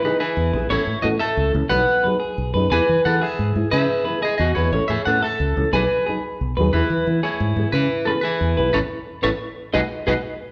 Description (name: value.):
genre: highlife.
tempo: 120 BPM (dotted quarters).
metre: 12/8.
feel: straight.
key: E major.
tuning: A4 = 442 Hz.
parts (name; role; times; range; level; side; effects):
electric guitar at the edge of break-up; melody; 0.0-10.1 s; C#4 to G#5; -25 LUFS; equal; none.
nylon-string guitar; accompaniment; 0.0-10.1 s; E3 to A4; -29 LUFS; equal; none.
clean electric guitar; arpeggios; 0.0-10.1 s; G#4 to D#5; -26 LUFS; equal; spring reverb.
fingered electric bass; bass; 0.4-10.1 s; A1 to E3; -26 LUFS; equal; none.
room: wet large studio reverb, RT60 1.4 s.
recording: band playing live in one room.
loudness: -20 LUFS.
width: mono.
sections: 0.0-10.5 A section.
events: band accent 8.7-10.5.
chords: 0.0 E; 0.7 Aadd9; 1.7 B6; 2.7 E; 4.7 Aadd9; 5.7 B6; 6.7 E; 8.7 Aadd9; 9.7 B6.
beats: 0.20 | 0.70 1.21 1.71 2.21 | 2.72 3.22 3.72 4.22 | 4.72 5.23 5.73 6.23 | 6.73 7.23 7.73 8.23 | 8.74 9.24 9.74.